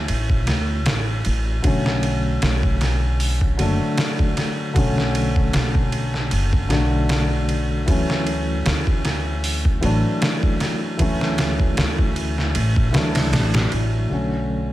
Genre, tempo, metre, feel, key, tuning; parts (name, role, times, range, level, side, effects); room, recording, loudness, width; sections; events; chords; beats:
trip hop; 77 BPM; 4/4; swing 55% on 16ths; B minor; A4 = 440 Hz
felt-muted upright piano; accompaniment; 0.0-14.7 s; D3 to D4; -23 LUFS; left 1 dB; harmonic tremolo, vintage 12-bit sampler grit, tape echo
upright bass; bass; 0.0-14.7 s; F#1 to D2; -22 LUFS; equal
trip hop sampler-style drum kit; drums; 0.1-13.9 s; hi-hat, kick drum, ride cymbal, snare drum; -22 LUFS; equal
little or no reverb; -18 LUFS; side -15 dB against mid
0.0-14.1 A section
0.0 Dmaj7; 1.6 Bm7; 7.9 Dmaj7; 14.1 Bm7
0.08 0.86 | 1.64 2.42 3.20 3.98 | 4.76 5.54 6.32 7.10 | 7.88 8.66 9.44 10.21 | 10.99 11.77 12.55 13.33 | 14.11